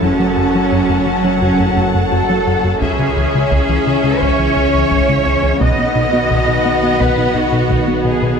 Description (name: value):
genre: cinematic, hybrid orchestral and electronic film score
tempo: 86 BPM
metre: 4/4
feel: straight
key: unclear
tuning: A4 = 440 Hz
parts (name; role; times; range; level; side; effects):
- rich symphonic violin section; second line; 0.0-8.4 s; D#5 to A5; -21 LUFS; left 3 dB; none
- clear symphonic viola section; accompaniment; 0.0-8.4 s; F#3 to C#4; -20 LUFS; equal; none
- dark analog pad; sustained chords; 0.0-8.4 s; D#3 to C#5; -21 LUFS; left 1 dB; chorus, phaser
- tight sequenced synth; arpeggios; 0.0-8.3 s; C#3 to B4; -25 LUFS; right 1 dB; chorus, tape echo
- rubbery square bass; riff; 0.0-8.3 s; C#2 to B3; -19 LUFS; left 1 dB; none
- phased detuned saw bass; bass; 0.0-8.4 s; F#1 to C#2; -23 LUFS; right 1 dB; phaser
- rich symphonic cello section; bass; 0.0-8.4 s; C#4 to D#5; -18 LUFS; right 3 dB; none
- taiko ensemble; drums; 2.8-8.4 s; none; -23 LUFS; equal; none
room: wet scoring stage reverb, RT60 1.9 s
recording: dark, warm production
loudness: -12 LUFS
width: side -6 dB against mid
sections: 0.0-8.4 A section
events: none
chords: 0.0 F#m; 2.8 C#m; 5.6 B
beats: | 0.03 0.73 1.42 2.12 | 2.82 3.52 4.21 4.91 | 5.61 6.31 7.01 7.70